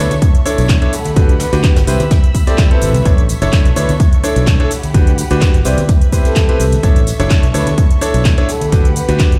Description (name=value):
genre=piano house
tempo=127 BPM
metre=4/4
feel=swing 54% on 16ths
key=B minor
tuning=A4 = 440 Hz
part: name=breathy flute-like synth lead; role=melody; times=0.0-9.1 s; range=A4 to D5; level=-26 LUFS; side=equal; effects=chorus
part: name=muted chamber violin section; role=sustained chords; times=0.0-9.4 s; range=G4 to E6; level=-31 LUFS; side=equal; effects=sidechain pumping
part: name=bright concert grand piano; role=riff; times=0.0-9.3 s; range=C4 to D5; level=-22 LUFS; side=equal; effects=sidechain pumping, dub echo
part: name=fingered electric bass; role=bass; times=0.0-9.4 s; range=F#1 to D2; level=-18 LUFS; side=equal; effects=sidechain pumping
part: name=house drum kit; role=drums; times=0.1-9.4 s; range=handclaps, hi-hat, shaker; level=-27 LUFS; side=equal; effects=none
part: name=congas and tambourine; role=percussion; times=0.1-9.3 s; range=none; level=-26 LUFS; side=equal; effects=none
part: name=electronic kick drum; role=drums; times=0.2-9.3 s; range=none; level=-13 LUFS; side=equal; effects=none
part: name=soft brush drum kit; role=drums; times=0.2-9.3 s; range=hi-hat, snare drum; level=-34 LUFS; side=equal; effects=none
room=little or no reverb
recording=played on a big sound system in a bare room, large studio reverb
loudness=-12 LUFS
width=mono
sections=0.0-9.4 A section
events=none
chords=0.0 Bm11; 0.9 Gmaj7; 1.9 Cmaj7; 3.1 Bm11; 4.7 Gmaj7; 5.7 Cmaj7; 6.8 Bm11; 8.5 Gmaj7